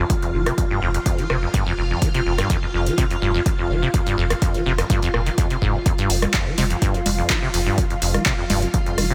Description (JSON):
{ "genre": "acid house", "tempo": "125 BPM", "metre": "4/4", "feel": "straight", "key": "unclear", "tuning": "A4 = 440 Hz", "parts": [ { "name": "string machine, full ensemble", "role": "sustained chords", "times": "0.0-9.1 s", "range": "F4 to F5", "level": "-29 LUFS", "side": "equal", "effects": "ensemble chorus, sidechain pumping" }, { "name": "acid bass, saw", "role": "riff", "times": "0.0-9.1 s", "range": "F2 to F3", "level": "-26 LUFS", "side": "equal", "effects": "lush chorus, delay" }, { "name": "electronic kick drum", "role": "drums", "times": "0.1-8.8 s", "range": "none", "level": "-24 LUFS", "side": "equal", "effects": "overdrive" }, { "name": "punchy analog drum machine", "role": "drums", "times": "0.1-9.1 s", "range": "congas, handclaps, hi-hat, rim click", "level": "-27 LUFS", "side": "equal", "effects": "overdrive" }, { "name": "round analog bass", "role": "bass", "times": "0.3-9.1 s", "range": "F1", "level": "-26 LUFS", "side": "equal", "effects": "sidechain pumping" } ], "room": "digital ambience", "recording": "none", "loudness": "-20 LUFS", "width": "mono", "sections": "0.0-9.1 A section", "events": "none", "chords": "none" }